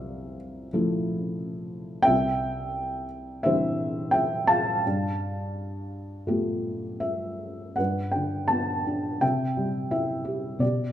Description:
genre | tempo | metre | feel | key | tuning
classical, lyrical solo piano | 84 BPM | 4/4 | uneven beats, rubato | G major from 7.8 s | A4 = 440 Hz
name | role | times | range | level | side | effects
felt-muted upright piano | solo | 0.0-10.9 s | C2 to A5 | -25 LUFS | equal | none
room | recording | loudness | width
moderate recital hall reverb, RT60 1.5 s | minimal, uncompressed stereo recording | -24 LUFS | side -11 dB against mid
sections
0.0-7.8 A section; 7.8-10.9 B section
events
none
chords
0.0 Fmaj7; 2.1 Cadd9; 4.8 G9; 7.8 Gadd9; 9.2 C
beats
0.05 0.72 1.39 | 2.06 2.75 3.44 4.15 | 4.85 5.54 6.27 7.04 | 7.79 8.51 9.23 9.93 | 10.62

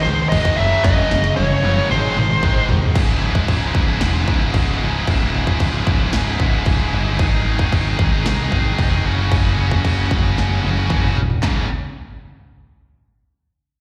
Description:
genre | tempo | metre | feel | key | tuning
heavy metal | 113 BPM | 4/4 | straight | C# harmonic minor | A4 = 442 Hz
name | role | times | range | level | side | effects
nasal lead guitar with a parked wah | melody | 0.0-2.7 s | B#4 to E5 | -22 LUFS | equal | overdrive, slapback echo, tape echo
heavy high-gain guitar | riff | 0.0-11.6 s | C#2 to G#3 | -25 LUFS | equal | distortion, slapback echo
high-gain distorted guitar | riff | 0.0-11.6 s | C#2 to G#4 | -28 LUFS | equal | distortion, slapback echo
tight distorted guitar | riff | 0.0-2.9 s | F#2 to G#3 | -29 LUFS | equal | distortion, slapback echo
modern bright picked electric bass | bass | 0.1-11.7 s | C#1 to C#2 | -22 LUFS | equal | none
big-room dance drum kit | drums | 0.3-11.6 s | crash cymbal, handclaps, kick drum, snare drum, toms | -22 LUFS | equal | none
room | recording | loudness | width
little or no reverb | live gig heard through the venue's PA, recital hall reverb | -18 LUFS | mono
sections
0.0-3.0 A section; 3.0-11.4 B section; 11.4-13.5 C section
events
drum fill 0.9-3.0, 10.4-11.4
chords
0.0 G#; 0.6 F#5; 1.9 G#; 3.0 C#m; 7.2 G#; 9.0 F#5; 11.4 C#5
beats
0.33 | 0.85 1.38 1.91 2.43 | 2.96 3.49 4.02 4.55 | 5.08 5.60 6.13 6.66 | 7.19 7.72 8.25 8.78 | 9.31 9.84 10.37 10.90 | 11.43

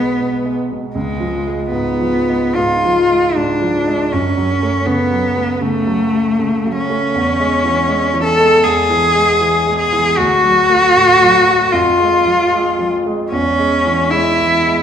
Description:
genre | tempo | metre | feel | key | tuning
classical, romantic duo for cello and grand piano | 78 BPM | 4/4 | uneven beats, rubato | unclear | A4 = 443 Hz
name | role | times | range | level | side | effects
clear cello | melody | 0.0-14.8 s | G#3 to A4 | -13 LUFS | left 1 dB | none
warm concert grand piano | accompaniment | 0.0-14.8 s | B1 to A3 | -19 LUFS | right 2 dB | none
room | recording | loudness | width
wet recital hall reverb, RT60 1.5 s | recorded in a church or concert hall | -12 LUFS | side -8 dB against mid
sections
0.0-14.8 A section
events
none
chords
0.0 G#m/B; 1.0 C#7; 4.1 F#m; 7.2 C#m/E; 10.2 D; 11.7 Fm; 13.3 C#m/E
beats
0.20 | 0.95 1.72 2.57 3.36 | 4.11 4.86 5.62 6.40 | 7.15 7.89 8.63 9.40 | 10.18 10.96 11.73 12.52 | 13.32 14.12

